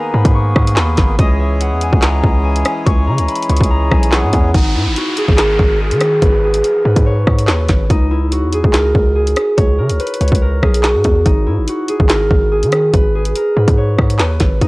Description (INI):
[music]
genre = hip hop, drill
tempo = 143 BPM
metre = 4/4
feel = half-time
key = G# minor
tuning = A4 = 440 Hz
[part]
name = concert harp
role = melody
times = 0.0-14.7 s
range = D#4 to C#6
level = -17 LUFS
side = equal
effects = none
[part]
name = hand-pumped harmonium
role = sustained chords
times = 0.0-4.5 s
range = D#3 to G#4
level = -21 LUFS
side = equal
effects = none
[part]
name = hard-hitting 808-style bass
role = bass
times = 0.1-14.7 s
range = G#1 to D#3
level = -15 LUFS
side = equal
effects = none
[part]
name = drill drum kit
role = drums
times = 0.2-14.7 s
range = handclaps, hi-hat, kick drum, rim click, snare drum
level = -14 LUFS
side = equal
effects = none
[part]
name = downlifter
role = sound effects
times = 4.5-7.9 s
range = none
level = -25 LUFS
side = equal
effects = none
[sound]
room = little or no reverb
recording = dry, gritty hardware recording, transformer saturation, cassette tape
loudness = -11 LUFS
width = side -22 dB against mid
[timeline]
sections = 0.0-4.5 A section; 4.5-14.7 B section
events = none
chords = 0.0 G#madd9; 1.2 C#m; 4.5 G#madd9; 7.9 C#m; 11.3 G#madd9